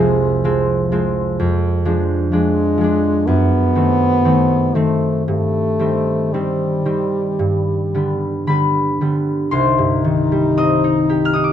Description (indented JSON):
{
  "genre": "classical, romantic duo for French horn and harp",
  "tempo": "53-65 BPM",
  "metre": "4/4",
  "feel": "rubato",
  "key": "C minor",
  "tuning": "A4 = 441 Hz",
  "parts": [
    { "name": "warm French horn", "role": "melody", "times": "0.0-11.5 s", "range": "G3 to Ab4", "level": "-19 LUFS", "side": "left 1 dB", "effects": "none" },
    { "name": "concert harp", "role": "accompaniment", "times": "0.0-11.5 s", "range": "C2 to F6", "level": "-16 LUFS", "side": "equal", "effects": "none" }
  ],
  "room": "light reverb",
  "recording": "close, detailed microphones",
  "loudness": "-14 LUFS",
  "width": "side -10 dB against mid",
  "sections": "0.0-9.5 A section; 9.5-11.5 B section",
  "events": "none",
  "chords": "0.0 Fm; 1.4 Ddim/F; 3.3 F#dim7; 5.3 Cm/G; 7.4 G; 9.5 Cm"
}